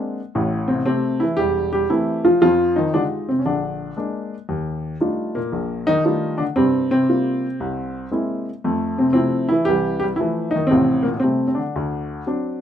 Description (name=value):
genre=solo jazz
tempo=116 BPM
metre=4/4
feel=swing 68% on 8ths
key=F major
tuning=A4 = 441 Hz
part: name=dark baby grand piano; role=solo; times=0.0-12.6 s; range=E1 to G4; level=-18 LUFS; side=equal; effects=none
room=moderate club reverb, RT60 0.5 s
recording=minimal, uncompressed stereo recording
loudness=-18 LUFS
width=side -9 dB against mid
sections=0.0-12.6 A section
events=none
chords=0.3 Am7; 2.4 Fm9; 3.5 Bb7; 4.5 Ebmaj9#11; 6.6 Gm7; 7.6 Caug7; 8.6 Fmaj7; 10.7 Bbmaj13/A (rootless); 11.8 D7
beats=| 0.34 0.86 1.38 1.89 | 2.41 2.93 3.45 3.97 | 4.49 5.01 5.53 6.04 | 6.56 7.08 7.60 8.12 | 8.64 9.16 9.68 10.19 | 10.71 11.23 11.75 12.27